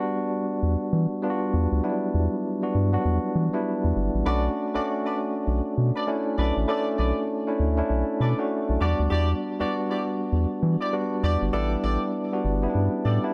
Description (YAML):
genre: R&B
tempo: 99 BPM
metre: 4/4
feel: swing 61% on 16ths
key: unclear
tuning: A4 = 440 Hz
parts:
  - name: tine electric piano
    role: accompaniment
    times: 0.0-13.3 s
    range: F#3 to A4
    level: -28 LUFS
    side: equal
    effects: none
  - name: round analog bass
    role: bass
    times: 0.6-13.2 s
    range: G1 to E3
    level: -26 LUFS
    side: equal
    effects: none
  - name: warm horn section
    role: stabs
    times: 4.3-13.2 s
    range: E4 to D5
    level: -34 LUFS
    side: equal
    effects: tape echo
room: light reverb, studio ambience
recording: none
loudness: -25 LUFS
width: mono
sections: 0.0-13.3 A section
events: none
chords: 0.0 Em7; 4.3 Bm7; 8.8 Em7; 11.5 A7sus4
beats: 0.01 0.62 1.23 | 1.83 2.44 3.04 3.65 | 4.26 4.86 5.47 6.07 | 6.68 7.29 7.89 8.50 | 9.11 9.71 10.32 10.92 | 11.53 12.13 12.74